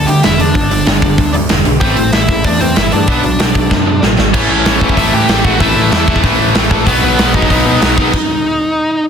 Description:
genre	punk rock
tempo	190 BPM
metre	4/4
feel	straight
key	unclear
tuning	A4 = 441 Hz
part	smooth overdriven lead guitar	melody	0.0-9.0 s	B3 to G5	-16 LUFS	equal	none
part	distorted electric guitar	riff	0.0-8.1 s	G2 to B3	-18 LUFS	right 12 dB	overdrive
part	overdriven electric guitar	riff	0.0-8.1 s	G2 to B3	-18 LUFS	left 11 dB	none
part	growling picked electric bass	bass	0.0-8.1 s	E1 to B2	-17 LUFS	equal	overdrive
part	big rock drum kit	drums	0.1-8.2 s	crash cymbal, hi-hat, kick drum, snare drum	-14 LUFS	equal	none
part	scooped high-gain guitar	riff	4.3-8.1 s	A2 to B3	-18 LUFS	left 2 dB	distortion
room	light reverb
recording	dense, heavily limited modern master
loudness	-9 LUFS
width	side -7 dB against mid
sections	0.0-4.3 A section; 4.3-9.1 B section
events	drum fill 3.7-4.3; stop 8.1-9.1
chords	0.0 Em; 1.8 Am; 3.1 Bm; 4.3 A; 6.9 B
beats	0.23 | 0.55 0.87 1.18 1.50 | 1.81 2.13 2.45 2.76 | 3.08 3.39 3.71 4.03 | 4.34 4.66 4.97 5.29 | 5.61 5.92 6.24 6.56 | 6.87 7.19 7.51 7.82 | 8.14 8.46 8.77

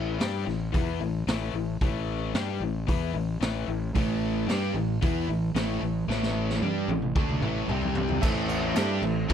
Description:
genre	classic rock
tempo	112 BPM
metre	4/4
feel	straight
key	A minor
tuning	A4 = 440 Hz
part	raw garage guitar	riff	0.0-9.3 s	A2 to G4	-31 LUFS	left 12 dB	overdrive
part	fuzz fingered electric bass	bass	0.0-9.3 s	A1 to G2	-31 LUFS	equal	overdrive
part	raw garage drum kit	drums	0.2-9.3 s	crash cymbal, hi-hat, kick drum, snare drum, toms	-29 LUFS	equal	none
part	sludgy distorted guitar	riff	3.9-9.3 s	A2 to G4	-31 LUFS	right 12 dB	overdrive
part	tonewheel organ	sustained chords	7.9-9.3 s	A3 to E5	-40 LUFS	equal	none
part	clear upright piano	accompaniment	8.2-9.3 s	E4 to F#5	-34 LUFS	right 10 dB	none
part	tight distorted guitar	riff	8.2-9.3 s	A2 to G4	-32 LUFS	right 1 dB	distortion
part	tambourine	percussion	8.2-8.9 s	none	-47 LUFS	left 12 dB	none
room	studio reverb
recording	none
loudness	-25 LUFS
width	side -8 dB against mid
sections	0.0-8.2 A section; 8.2-9.3 A section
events	drum fill 6.1-8.2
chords	0.0 A5; 7.7 C5; 8.2 Am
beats	0.20 0.74 1.27 | 1.81 2.34 2.88 3.41 | 3.95 4.48 5.02 5.55 | 6.09 6.62 7.16 7.69 | 8.23 8.76 9.30

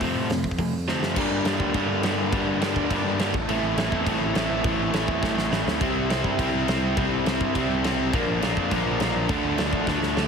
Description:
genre	punk rock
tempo	207 BPM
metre	4/4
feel	straight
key	unclear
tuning	A4 = 439 Hz
part	distorted electric guitar	riff	0.0-10.3 s	F2 to D4	-27 LUFS	left 10 dB	distortion
part	overdriven electric guitar	riff	0.0-10.3 s	G2 to E4	-28 LUFS	right 14 dB	none
part	tine electric piano	bass	0.0-10.3 s	A1 to D3	-30 LUFS	equal	none
part	big rock drum kit	drums	0.0-10.2 s	crash cymbal, hi-hat, kick drum, snare drum	-28 LUFS	equal	none
part	raw garage guitar	riff	1.2-10.3 s	G2 to E4	-30 LUFS	equal	overdrive
room	little or no reverb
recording	heavily compressed radio sound, multiband compression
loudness	-22 LUFS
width	side -6 dB against mid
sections	0.0-1.2 A section; 1.2-10.3 B section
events	drum fill 0.9, 5.2-5.8, 9.9-10.3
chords	0.0 F; 1.2 Gm; 3.3 Am; 5.8 C; 8.1 Bb; 9.3 Dm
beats	| 0.01 0.30 0.59 0.88 | 1.17 1.46 1.75 2.04 | 2.33 2.62 2.91 3.20 | 3.49 3.78 4.07 4.36 | 4.65 4.94 5.23 5.52 | 5.81 6.10 6.39 6.68 | 6.97 7.26 7.55 7.84 | 8.13 8.42 8.71 9.00 | 9.29 9.58 9.88 10.17

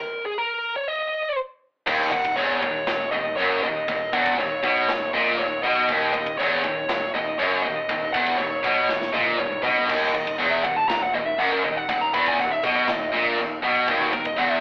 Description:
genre	heavy metal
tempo	120 BPM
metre	4/4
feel	straight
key	Eb phrygian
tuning	A4 = 440 Hz
part	high-gain lead guitar	melody	0.0-14.6 s	Gb4 to Cb6	-24 LUFS	equal	distortion
part	high-gain distorted guitar	riff	1.9-14.6 s	Eb2 to Cb3	-23 LUFS	equal	distortion
part	tight distorted guitar	riff	1.9-14.6 s	Eb2 to Cb3	-27 LUFS	equal	distortion
part	modern bright picked electric bass	bass	1.9-14.6 s	Eb1 to Cb2	-40 LUFS	equal	none
part	tight metal drum kit	drums	1.9-14.5 s	china cymbal, crash cymbal, kick drum, snare drum, splash cymbal, toms	-30 LUFS	equal	none
room	moderate small room reverb, RT60 0.5 s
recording	rough rehearsal-room recording, telephone sound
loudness	-20 LUFS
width	side -35 dB against mid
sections	0.0-1.9 A section; 1.9-14.6 B section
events	stop 0.0-1.9; lead electric guitar solo 1.9-14.6; drum fill 8.9-9.9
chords	0.0 Eb5; 1.9 Ebm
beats	0.36 0.87 1.37 | 1.87 2.38 2.88 3.38 | 3.88 4.38 4.89 5.39 | 5.89 6.39 6.89 7.39 | 7.89 8.39 8.89 9.39 | 9.89 10.39 10.89 11.39 | 11.88 12.38 12.88 13.38 | 13.88 14.38

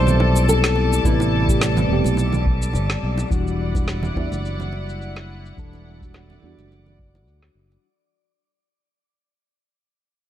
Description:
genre	sunset chillout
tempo	106 BPM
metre	4/4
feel	swing 55% on 16ths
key	unclear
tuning	A4 = 440 Hz
part	nylon-string guitar	melody	0.0-2.7 s	E4 to C5	-24 LUFS	equal	digital delay
part	mellow FM electric piano	accompaniment	0.0-7.9 s	C3 to B4	-26 LUFS	moving between left 7 dB and right 5 dB	chorus, phaser, auto-pan, digital delay
part	dark studio string section	sustained chords	0.0-7.8 s	G3 to A5	-28 LUFS	left 2 dB	none
part	fingered electric bass	bass	0.0-7.8 s	E1 to E2	-21 LUFS	equal	none
part	wind-like tuned noise texture	texture	0.0-7.8 s	D5 to D6	-32 LUFS	left 6 dB	built-in reverb
part	electronic shaker and snare drum	drums	0.1-7.8 s	none	-27 LUFS	equal	low-pass filter on perc, low-pass filter on hats, low-pass filter on snare
part	congas and bongos	percussion	0.1-7.8 s	none	-29 LUFS	right 3 dB	none
part	electronic kick drum	drums	1.0-7.1 s	none	-22 LUFS	equal	none
room	light reverb, small room ambience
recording	none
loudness	-17 LUFS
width	side -11 dB against mid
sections	0.0-7.8 A section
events	fade-out 0.0-7.8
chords	0.0 Am9; 3.3 Em9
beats	0.48 | 1.04 1.61 2.18 2.74 | 3.31 3.87 4.44 5.01 | 5.57 6.14 6.71 7.27

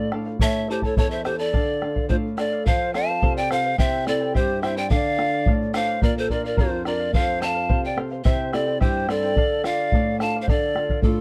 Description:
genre	andean folk, Andean ensemble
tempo	107 BPM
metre	2/4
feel	straight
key	D minor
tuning	A4 = 440 Hz
part	breathy bright pan flute	melody	0.0-11.2 s	A4 to A5	-27 LUFS	equal	none
part	mellow hollow large quena	second line	0.0-11.2 s	F4 to F5	-30 LUFS	equal	none
part	charango	accompaniment	0.0-11.2 s	E4 to A5	-35 LUFS	equal	none
part	flamenco guitar	accompaniment	0.0-11.2 s	E2 to Bb4	-30 LUFS	equal	none
part	bombo	percussion	0.1-11.2 s	none	-25 LUFS	equal	none
room	light reverb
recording	dark, warm production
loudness	-22 LUFS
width	mono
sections	0.0-2.7 A section; 2.7-11.2 B section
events	none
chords	0.4 A; 1.5 Dm; 2.7 F; 3.8 C; 4.9 Dm; 6.0 Bb; 7.1 F; 8.3 C; 9.4 Dm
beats	| 0.41 0.97 | 1.54 2.10 | 2.66 3.23 | 3.79 4.35 | 4.91 5.47 | 6.03 6.58 | 7.14 7.70 | 8.26 8.81 | 9.37 9.93 | 10.48 11.04

